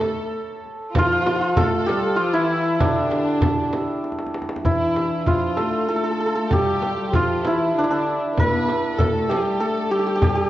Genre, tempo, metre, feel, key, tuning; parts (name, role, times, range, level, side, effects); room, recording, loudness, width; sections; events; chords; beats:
Persian modal ensemble; 97 BPM; 3/4; straight; D avaz esfahan; A4 = 441 Hz
santur; melody; 0.0-10.5 s; D4 to C#5; -21 LUFS; right 1 dB
warm French horn; second line; 0.0-10.5 s; D3 to Bb3+49c; -27 LUFS; left 3 dB
warm studio violin section; second line; 0.0-10.5 s; D4 to Bb4+50c; -29 LUFS; left 1 dB; analog delay
frame drum; percussion; 0.0-10.4 s; -27 LUFS; right 3 dB
tombak; percussion; 0.7-10.4 s; -24 LUFS; left 1 dB
moderate scoring stage reverb, RT60 1.8 s; worn, warbling old tape, cassette tape, warbly pitch drift, nothing above 7.8 kHz; -18 LUFS; side -14 dB against mid
0.0-4.7 A section; 4.7-10.5 B section
drum fill 4.0-4.7
0.34 | 0.95 1.57 2.18 | 2.80 3.42 4.03 | 4.65 5.27 5.88 | 6.50 7.12 7.74 | 8.36 8.98 9.60 | 10.21